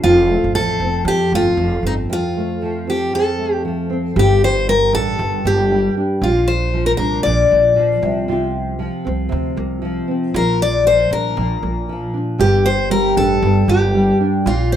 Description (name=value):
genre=acoustic pop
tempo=117 BPM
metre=4/4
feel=swing 55% on 16ths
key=unclear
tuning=A4 = 439 Hz
part: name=picked steel-string acoustic guitar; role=melody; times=0.0-14.8 s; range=Eb4 to D5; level=-17 LUFS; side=left 2 dB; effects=plate reverb
part: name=nylon-string guitar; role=accompaniment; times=0.0-14.8 s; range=F2 to G4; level=-19 LUFS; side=equal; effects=double-tracked left and right, plate reverb
part: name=upright bass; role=bass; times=0.0-14.8 s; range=F1 to F2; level=-21 LUFS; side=right 1 dB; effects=none
room=wet small room reverb, RT60 0.5 s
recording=rough home demo mix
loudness=-14 LUFS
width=side -10 dB against mid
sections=0.0-4.2 A section; 4.2-14.8 B section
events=break 2.1-4.2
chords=0.0 F; 4.2 Gm; 6.2 Bb; 8.0 Fsus4/C; 10.3 Bb; 12.4 Gm